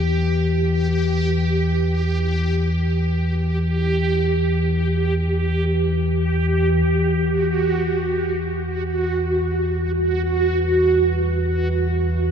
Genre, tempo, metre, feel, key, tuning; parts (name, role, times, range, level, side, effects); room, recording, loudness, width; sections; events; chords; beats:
dark ambient drone; free time; E minor; A4 = 440 Hz
deep rumbling drone; drone; 0.0-12.3 s; E2 to E3; -20 LUFS; left 1 dB; built-in reverb
backwards swelling texture; texture; 0.0-12.3 s; F#4 to G4; -22 LUFS; right 2 dB; built-in reverb
deep dark ambient pad; sustained chords; 10.1-12.3 s; G3 to E5; -37 LUFS; right 3 dB
wet huge ambient reverb, RT60 8.4 s; dark, warm production; -18 LUFS; side -7 dB against mid
0.0-6.9 A section; 6.9-12.3 B section
0.0 Em; 6.9 Emadd9
free time